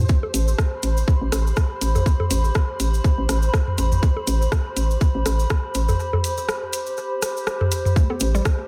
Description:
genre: minimal techno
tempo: 122 BPM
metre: 4/4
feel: swing 56% on 16ths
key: A minor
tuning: A4 = 440 Hz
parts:
  - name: hollow knocking FM bass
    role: bass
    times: 0.0-8.4 s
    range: A1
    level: -22 LUFS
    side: equal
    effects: sidechain pumping
  - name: flickering grainy texture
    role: texture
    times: 0.0-8.7 s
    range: C5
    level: -39 LUFS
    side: equal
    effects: built-in reverb, sidechain pumping
  - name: warbly tape-like pad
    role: texture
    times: 0.0-8.7 s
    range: G4 to B5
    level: -31 LUFS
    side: equal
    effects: chorus, built-in reverb, sidechain pumping
  - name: electronic kick drum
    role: drums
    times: 0.1-8.6 s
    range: none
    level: -21 LUFS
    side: equal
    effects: overdrive, studio reverb
  - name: cabasa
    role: percussion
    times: 0.1-8.6 s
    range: none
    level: -36 LUFS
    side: equal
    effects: none
  - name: electronic bongos and toms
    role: percussion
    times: 0.2-8.2 s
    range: none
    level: -26 LUFS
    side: equal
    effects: overdrive, studio reverb, analog delay
  - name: garage drum kit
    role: drums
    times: 0.3-8.6 s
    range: hi-hat, rim click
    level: -31 LUFS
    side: equal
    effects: studio reverb, analog delay
  - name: mallet-like synth pluck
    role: riff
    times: 8.0-8.4 s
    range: G3 to B3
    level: -32 LUFS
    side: equal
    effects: chorus, sidechain pumping, dub echo
room: light reverb, digital ambience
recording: echo-heavy mix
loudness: -21 LUFS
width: mono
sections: 0.0-8.7 A section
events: break 6.0-8.0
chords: 0.0 Am7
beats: | 0.09 0.58 1.08 1.57 | 2.06 2.55 3.04 3.54 | 4.03 4.52 5.01 5.50 | 6.00 6.49 6.98 7.47 | 7.96 8.45

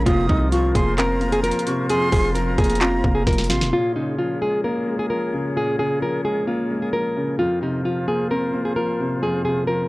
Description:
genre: hip hop, trap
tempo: 131 BPM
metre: 4/4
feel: half-time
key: Bb minor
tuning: A4 = 443 Hz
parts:
  - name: nylon-string guitar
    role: melody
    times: 0.0-9.9 s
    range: Eb4 to Bb4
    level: -23 LUFS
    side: equal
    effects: low-pass filter, tape echo
  - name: breathy jazz flute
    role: second line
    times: 0.0-3.7 s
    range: Bb5 to Eb6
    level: -29 LUFS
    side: right 2 dB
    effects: tape echo
  - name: felt-muted upright piano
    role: accompaniment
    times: 0.0-9.9 s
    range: F2 to C4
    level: -24 LUFS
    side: left 1 dB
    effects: low-pass filter
  - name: flute section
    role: sustained chords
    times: 0.0-9.9 s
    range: F4 to Db5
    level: -32 LUFS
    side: equal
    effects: none
  - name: hard-hitting 808-style bass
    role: bass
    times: 0.0-3.7 s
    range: F1 to C2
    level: -23 LUFS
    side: equal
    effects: none
  - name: trap drum kit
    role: drums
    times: 0.1-3.7 s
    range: handclaps, hi-hat, kick drum, snare drum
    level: -22 LUFS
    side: equal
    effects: none
room: small room ambience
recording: dry, gritty hardware recording, transformer saturation, cassette tape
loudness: -19 LUFS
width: side -20 dB against mid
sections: 0.0-3.7 A section; 3.7-9.9 B section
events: drum fill 3.3-3.7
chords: 0.1 Fsus4; 3.7 Bbm7; 7.4 Fsus4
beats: | 0.06 0.52 0.98 1.44 | 1.90 2.35 2.81 3.27 | 3.73 4.19 4.64 5.10 | 5.56 6.02 6.48 6.93 | 7.39 7.85 8.31 8.77 | 9.22 9.68

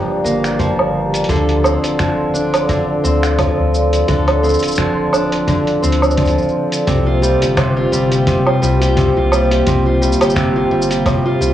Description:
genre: folktronica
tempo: 86 BPM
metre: 4/4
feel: swing 56% on 16ths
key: unclear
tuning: A4 = 440 Hz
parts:
  - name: warbly tape-like pad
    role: sustained chords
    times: 0.0-11.5 s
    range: C3 to C6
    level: -19 LUFS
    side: equal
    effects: chorus, built-in reverb, cassette tape, plate reverb
  - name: picked acoustic archtop guitar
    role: arpeggios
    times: 0.0-11.5 s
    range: G2 to A4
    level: -17 LUFS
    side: equal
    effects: cassette tape, analog delay, plate reverb
  - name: warm sub bass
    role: bass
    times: 0.0-11.5 s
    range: D1 to D2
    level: -20 LUFS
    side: left 1 dB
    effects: tube saturation
  - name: lo-fi sampler-style drum kit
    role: drums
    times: 0.3-11.5 s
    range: finger snaps, hi-hat, shaker, woodblock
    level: -20 LUFS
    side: right 2 dB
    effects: cassette tape
  - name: kick drum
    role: drums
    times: 0.6-11.2 s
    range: none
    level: -23 LUFS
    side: equal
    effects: cassette tape
room: moderate small room reverb, RT60 0.5 s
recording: home recording on cassette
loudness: -13 LUFS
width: side -11 dB against mid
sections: 0.0-6.9 A section; 6.9-11.5 B section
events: none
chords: 0.0 Gm7; 1.3 Dm7; 6.9 C7sus4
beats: 0.60 | 1.29 1.99 2.69 3.39 | 4.08 4.78 5.48 6.18 | 6.88 7.57 8.27 8.97 | 9.67 10.36 11.06

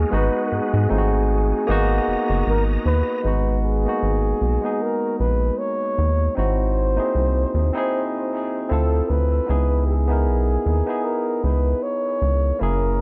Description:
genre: R&B, neo-soul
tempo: 77 BPM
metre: 4/4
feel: swing 56% on 16ths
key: G# minor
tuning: A4 = 440 Hz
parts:
  - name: breathy flugelhorn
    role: melody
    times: 0.0-13.0 s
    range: G#4 to C#5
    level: -27 LUFS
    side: equal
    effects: tape echo
  - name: barky tine electric piano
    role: accompaniment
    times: 0.0-13.0 s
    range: G#3 to A#4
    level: -27 LUFS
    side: equal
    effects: overdrive, tape echo
  - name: bright tonewheel organ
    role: sustained chords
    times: 0.0-3.2 s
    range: G#3 to A#5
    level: -36 LUFS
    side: equal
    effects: chorus vibrato, fast rotary speaker
  - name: rubbery square bass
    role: bass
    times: 0.0-13.0 s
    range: F#1 to G#2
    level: -22 LUFS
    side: equal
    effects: none
room: light reverb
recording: echo-heavy mix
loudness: -21 LUFS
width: mono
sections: 0.0-3.2 A section; 3.2-13.0 B section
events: none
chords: 0.0 G#m9; 0.9 G#7b9; 1.7 G#m9; 6.4 G#7b13; 8.7 Dm9; 9.5 C#m9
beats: | 0.12 0.90 1.68 2.46 | 3.23 4.01 4.79 5.57 | 6.35 7.13 7.91 8.69 | 9.47 10.25 11.03 11.81 | 12.59

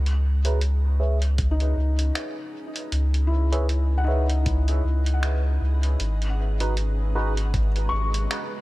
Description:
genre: ambient dub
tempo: 78 BPM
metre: 4/4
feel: swing 57% on 16ths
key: C# minor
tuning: A4 = 440 Hz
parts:
  - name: granular cloud pad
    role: sustained chords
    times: 0.0-8.6 s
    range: G#3 to F#5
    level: -40 LUFS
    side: equal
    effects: built-in reverb
  - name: warm sub bass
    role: bass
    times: 0.0-8.3 s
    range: G#1 to C#2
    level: -21 LUFS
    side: equal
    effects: tube saturation
  - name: lo-fi sampler-style drum kit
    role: drums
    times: 0.1-8.5 s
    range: finger snaps, hi-hat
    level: -33 LUFS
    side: right 1 dB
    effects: overdrive, dub echo
  - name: barky tine electric piano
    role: stabs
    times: 0.4-7.3 s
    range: D#4 to E5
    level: -33 LUFS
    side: right 2 dB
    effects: lush chorus, low-pass filter, dub echo
  - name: electronic kick drum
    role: drums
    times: 1.4-7.7 s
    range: none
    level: -26 LUFS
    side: equal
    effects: overdrive
  - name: felt-muted upright piano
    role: arpeggios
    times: 1.5-8.6 s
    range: D#4 to C#6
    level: -32 LUFS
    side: left 3 dB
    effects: dub echo
room: digital ambience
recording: none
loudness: -21 LUFS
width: side -18 dB against mid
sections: 0.0-8.6 A section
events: fade-in on ambient pad 0.0-8.6; filter sweep on tine electric piano 0.0-8.6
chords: 0.0 C#m7; 6.0 G#m7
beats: 0.61 1.38 2.15 | 2.92 3.69 4.46 5.23 | 6.00 6.77 7.54 8.31

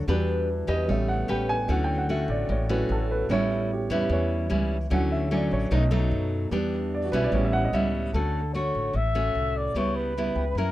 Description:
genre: bossa nova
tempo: 149 BPM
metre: 4/4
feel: straight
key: D major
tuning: A4 = 441 Hz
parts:
  - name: nylon-string guitar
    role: accompaniment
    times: 0.0-10.7 s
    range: A2 to B4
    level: -28 LUFS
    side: left 1 dB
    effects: none
  - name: warm grand piano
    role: accompaniment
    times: 0.0-10.7 s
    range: F#3 to G#5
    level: -29 LUFS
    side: right 2 dB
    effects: none
  - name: upright bass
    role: bass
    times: 0.0-10.7 s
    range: A1 to F#2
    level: -27 LUFS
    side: equal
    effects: none
  - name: mellow flugelhorn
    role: melody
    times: 8.1-10.7 s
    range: A4 to E5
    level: -28 LUFS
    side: left 1 dB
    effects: none
room: little or no reverb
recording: dry, close 1970s-style studio recording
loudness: -23 LUFS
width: side -15 dB against mid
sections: 0.0-8.1 A section; 8.1-10.7 B section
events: grand piano solo 0.0-8.1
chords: 0.1 Em7; 0.9 A9; 1.7 Dmaj7; 3.3 A7; 4.9 Dmaj7; 5.7 B7; 6.5 Em7; 7.3 A7; 8.1 Dmaj7; 9.7 C#m7b5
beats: | 0.08 0.48 0.88 1.28 | 1.69 2.09 2.49 2.90 | 3.30 3.70 4.11 4.51 | 4.91 5.31 5.72 6.12 | 6.52 6.92 7.33 7.73 | 8.13 8.54 8.94 9.35 | 9.75 10.15 10.56

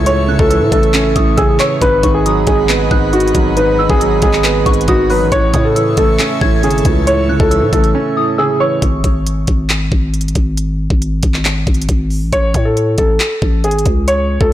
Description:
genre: hip hop, trap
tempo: 137 BPM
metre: 4/4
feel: half-time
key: unclear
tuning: A4 = 439 Hz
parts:
  - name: dark concert grand piano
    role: accompaniment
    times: 0.0-8.8 s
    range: G#2 to C#4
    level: -18 LUFS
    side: right 4 dB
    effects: low-pass filter
  - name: airy breathy pad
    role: sustained chords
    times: 0.0-8.8 s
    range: G#4 to C#6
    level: -23 LUFS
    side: right 2 dB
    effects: chorus
  - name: growling 808-style bass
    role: bass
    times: 0.0-14.5 s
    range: G#1 to A2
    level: -16 LUFS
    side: equal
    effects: none
  - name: felt-muted upright piano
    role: melody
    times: 0.1-8.8, 12.3-14.5 s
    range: F#4 to C#5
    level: -15 LUFS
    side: equal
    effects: low-pass filter, digital delay
  - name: trap drum kit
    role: drums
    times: 0.1-14.5 s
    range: handclaps, hi-hat, kick drum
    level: -16 LUFS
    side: equal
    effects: none
  - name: soft synth bell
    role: second line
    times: 0.3-8.8 s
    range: C#6 to G#6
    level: -22 LUFS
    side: equal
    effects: chorus, phaser, digital delay
room: light reverb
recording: blown-out, overdriven recording, overdrive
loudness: -11 LUFS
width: side -12 dB against mid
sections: 0.0-8.8 A section; 8.8-14.5 B section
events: break 7.9-8.8, 8.8-12.3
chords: 0.0 A; 1.8 G#m7; 5.3 A; 8.8 N.C.; 12.3 A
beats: | 0.06 0.50 0.94 1.38 | 1.81 2.25 2.69 3.13 | 3.57 4.00 4.44 4.88 | 5.32 5.76 6.20 6.63 | 7.07 7.51 7.95 8.38 | 8.82 9.26 9.70 10.14 | 10.57 11.01 11.45 11.89 | 12.33 12.76 13.20 13.64 | 14.08 14.52

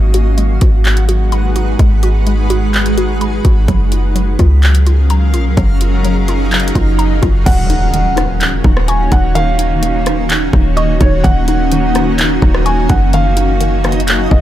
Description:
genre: hip hop, atmospheric cloud-rap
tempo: 127 BPM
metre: 4/4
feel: half-time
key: Eb minor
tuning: A4 = 440 Hz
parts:
  - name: granular cloud pad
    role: sustained chords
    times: 0.0-14.4 s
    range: Eb3 to F5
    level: -18 LUFS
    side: equal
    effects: built-in reverb, sidechain pumping
  - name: hollow square pluck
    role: arpeggios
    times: 0.0-14.4 s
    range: Eb3 to Db6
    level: -22 LUFS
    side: left 2 dB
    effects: chorus, tape echo
  - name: clean 808-style bass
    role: bass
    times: 0.0-14.4 s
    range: Eb1 to Db2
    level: -13 LUFS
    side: equal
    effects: none
  - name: backwards swelling texture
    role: texture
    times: 0.0-14.4 s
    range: Eb4 to Cb6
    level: -25 LUFS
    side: right 1 dB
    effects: built-in reverb
  - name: trap drum kit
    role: drums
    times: 0.1-14.4 s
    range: crash cymbal, handclaps, hi-hat, kick drum, rim click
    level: -15 LUFS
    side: equal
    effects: none
  - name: swell and impact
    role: sound effects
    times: 6.0-9.4 s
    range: none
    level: -23 LUFS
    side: right 2 dB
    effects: none
  - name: felt-muted upright piano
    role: melody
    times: 7.5-14.4 s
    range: Db5 to Ab5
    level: -19 LUFS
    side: right 1 dB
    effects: tape echo
room: digital ambience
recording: none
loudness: -10 LUFS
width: side -12 dB against mid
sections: 0.0-7.5 A section; 7.5-14.4 B section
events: swell 6.0-7.5; impact 7.5-9.4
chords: 0.0 Abm7; 3.7 Gbmaj7; 7.5 Ebm7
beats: 0.38 0.85 1.32 | 1.79 2.27 2.74 3.21 | 3.68 4.16 4.63 5.10 | 5.57 6.05 6.52 6.99 | 7.46 7.94 8.41 8.88 | 9.35 9.83 10.30 10.77 | 11.24 11.72 12.19 12.66 | 13.13 13.61 14.08

